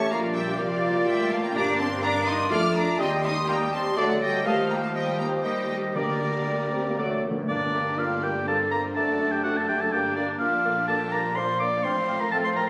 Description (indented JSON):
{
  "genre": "quick classical-period movement for symphony orchestra",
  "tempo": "124 BPM",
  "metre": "3/4",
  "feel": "rubato",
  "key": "G minor",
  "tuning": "A4 = 440 Hz",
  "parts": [
    { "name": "rich studio violin section", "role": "melody", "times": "0.0-12.7 s", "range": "A4 to F6", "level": "-38 LUFS", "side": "equal", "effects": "none" },
    { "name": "bright concert flute", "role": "second line", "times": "0.0-12.6 s", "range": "A4 to F6", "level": "-37 LUFS", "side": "equal", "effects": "none" },
    { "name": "clear oboe", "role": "second line", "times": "0.0-12.7 s", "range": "C#5 to D6", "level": "-31 LUFS", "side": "equal", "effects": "none" },
    { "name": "rich studio violin section", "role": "second line", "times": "0.0-12.7 s", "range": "Bb3 to D6", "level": "-40 LUFS", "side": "equal", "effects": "none" },
    { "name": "warm clarinet", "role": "second line", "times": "0.0-12.7 s", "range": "D4 to D5", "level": "-34 LUFS", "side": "equal", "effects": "none" },
    { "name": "rich chamber viola section", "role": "accompaniment", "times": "0.0-12.7 s", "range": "F3 to Bb4", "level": "-38 LUFS", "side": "equal", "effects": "none" },
    { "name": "warm bassoon", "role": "accompaniment", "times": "0.0-12.7 s", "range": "Eb3 to C4", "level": "-35 LUFS", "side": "equal", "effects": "none" },
    { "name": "dark French horn section", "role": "sustained chords", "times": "0.0-12.7 s", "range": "F3 to G4", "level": "-34 LUFS", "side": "equal", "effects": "none" },
    { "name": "mellow trumpet section", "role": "stabs", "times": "0.0-7.2 s", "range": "C#5 to Eb5", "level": "-36 LUFS", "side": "equal", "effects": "none" },
    { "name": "rich chamber double bass section", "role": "bass", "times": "0.0-12.7 s", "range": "F#1 to G2", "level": "-37 LUFS", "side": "equal", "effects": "none" },
    { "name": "rich symphonic cello section", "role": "bass", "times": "0.0-12.7 s", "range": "F#2 to F4", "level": "-36 LUFS", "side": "equal", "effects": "none" },
    { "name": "timpani", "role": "percussion", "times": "1.6-2.2, 6.0-8.2 s", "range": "G2 to D3", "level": "-39 LUFS", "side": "equal", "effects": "none" }
  ],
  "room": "wet concert hall reverb, RT60 1.8 s",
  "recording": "recorded on a phone in the room, club reverb",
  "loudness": "-25 LUFS",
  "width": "mono",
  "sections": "0.0-7.5 A section; 7.5-12.7 B section",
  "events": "timpani fill 7.0-7.5",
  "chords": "0.1 Bb; 1.6 Gm; 2.5 Dm/F; 3.0 Cm/Eb; 4.0 D; 4.5 Eb; 6.0 Gm/D; 7.0 D; 7.5 Gm; 9.0 D/F#; 9.9 Gm; 10.4 Bb; 11.8 F/A"
}